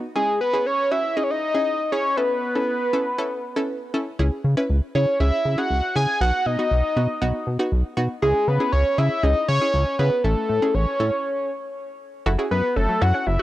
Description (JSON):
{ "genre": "synth-pop", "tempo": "119 BPM", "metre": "4/4", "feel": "straight", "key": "C# minor", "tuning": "A4 = 440 Hz", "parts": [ { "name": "analog pluck", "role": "accompaniment", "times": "0.0-13.3 s", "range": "B3 to B4", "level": "-27 LUFS", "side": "right 1 dB", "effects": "chorus" }, { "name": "fat analog lead", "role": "melody", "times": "0.2-13.4 s", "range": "G#4 to G#5", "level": "-22 LUFS", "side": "equal", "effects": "phaser, analog delay" }, { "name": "chorused synth bass", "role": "bass", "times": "4.2-13.4 s", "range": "F#1 to C#3", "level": "-20 LUFS", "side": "equal", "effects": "none" }, { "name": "wide unison pluck", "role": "arpeggios", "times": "12.3-13.4 s", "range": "F#3 to F#4", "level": "-29 LUFS", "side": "equal", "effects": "analog delay" } ], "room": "light reverb, digital ambience", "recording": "dry, gritty hardware recording, cassette tape", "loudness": "-19 LUFS", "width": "side -15 dB against mid", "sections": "0.0-12.3 A section; 12.3-13.4 B section", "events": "stop 11.3-12.3", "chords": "0.2 C#m; 2.2 A; 4.2 C#m; 6.2 B; 8.2 C#m; 10.2 A; 12.3 F#m7" }